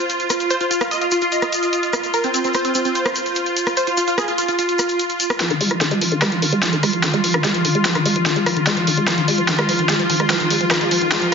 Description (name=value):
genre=psychedelic trance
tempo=147 BPM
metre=4/4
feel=straight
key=F minor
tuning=A4 = 439 Hz
part: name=supersaw stab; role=melody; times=0.0-5.3 s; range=C4 to Eb5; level=-21 LUFS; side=right 1 dB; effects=phaser, ping-pong delay
part: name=evolving wavetable pad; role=sustained chords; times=0.0-11.3 s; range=F4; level=-21 LUFS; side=left 1 dB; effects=ensemble chorus, built-in reverb
part: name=big-room dance drum kit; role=drums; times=0.1-11.3 s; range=hi-hat, rim click, snare drum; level=-21 LUFS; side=equal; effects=overdrive, high-pass filter on hats, high-pass filter on snare
part: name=tube shaker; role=percussion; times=0.1-5.4 s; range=none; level=-28 LUFS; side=left 3 dB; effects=none
part: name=woody wave-folded pluck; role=riff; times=5.4-11.3 s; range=Eb3 to Ab3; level=-20 LUFS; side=moving between left 4 dB and right 5 dB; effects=chorus, auto-pan, dub echo
room=wet digital room reverb, RT60 1.4 s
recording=heavily compressed radio sound, nothing above 7.5 kHz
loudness=-16 LUFS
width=side -6 dB against mid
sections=0.0-5.4 A section; 5.4-11.3 B section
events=build-up 5.4-11.3; drum fill 5.4-11.3; filter sweep on synth arpeggio sound 5.4-11.3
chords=0.0 F5